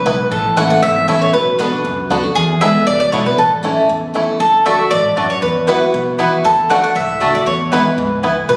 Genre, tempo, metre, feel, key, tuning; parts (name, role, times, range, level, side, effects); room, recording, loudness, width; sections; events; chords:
bluegrass; 235 BPM; 4/4; straight; A4 = 440 Hz
mandolin; melody; 0.0-8.6 s; G#4 to F#5; -17 LUFS; equal
picked steel-string acoustic guitar; accompaniment; 0.0-8.6 s; E2 to F#4; -20 LUFS; equal
bluegrass banjo; melody; 0.1-8.3 s; A3 to F#4; -26 LUFS; equal
upright bass; bass; 0.1-8.6 s; F#1 to E2; -28 LUFS; equal
mandolin; stabs; 4.7-8.3 s; A3 to A5; -22 LUFS; equal; tape echo
wet recital hall reverb, RT60 1.5 s; recorded on a phone in the room, studio reverb; -15 LUFS; mono
0.0-8.6 A section
0.3 A; 1.3 Bm; 2.4 E7; 3.4 A; 4.4 D; 5.4 Esus2; 6.4 D; 7.5 E